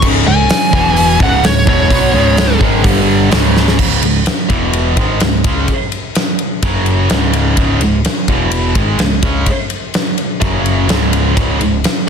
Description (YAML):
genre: hard rock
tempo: 127 BPM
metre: 4/4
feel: straight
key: C# minor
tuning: A4 = 440 Hz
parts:
  - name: high-gain lead guitar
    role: melody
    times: 0.0-2.6 s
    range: C#5 to G#5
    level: -15 LUFS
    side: equal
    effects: distortion, tape echo
  - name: heavy high-gain guitar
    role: riff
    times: 0.0-12.1 s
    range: C#2 to C#4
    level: -16 LUFS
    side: equal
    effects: distortion
  - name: sludgy distorted guitar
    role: riff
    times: 0.0-3.8 s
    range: C#2 to B3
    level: -18 LUFS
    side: right 1 dB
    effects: overdrive
  - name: overdriven picked electric bass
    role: bass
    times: 0.0-11.8 s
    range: C#1 to C#2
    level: -16 LUFS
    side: equal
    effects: none
  - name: big rock drum kit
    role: drums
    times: 0.0-12.0 s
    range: crash cymbal, hi-hat, kick drum, ride cymbal, snare drum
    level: -15 LUFS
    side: equal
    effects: none
room: light reverb, small room ambience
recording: dense, heavily limited modern master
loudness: -10 LUFS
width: side -7 dB against mid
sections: 0.0-3.8 A section; 3.8-12.1 B section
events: lead electric guitar solo 0.0-3.8; drum fill 3.6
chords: 0.0 C#5; 0.7 E5; 1.2 C#m; 2.8 G5; 3.3 C#5; 4.5 E5; 5.0 C#5; 6.6 F#5; 7.1 C#5; 8.3 E5; 8.8 C#5; 10.4 F#5; 10.9 C#5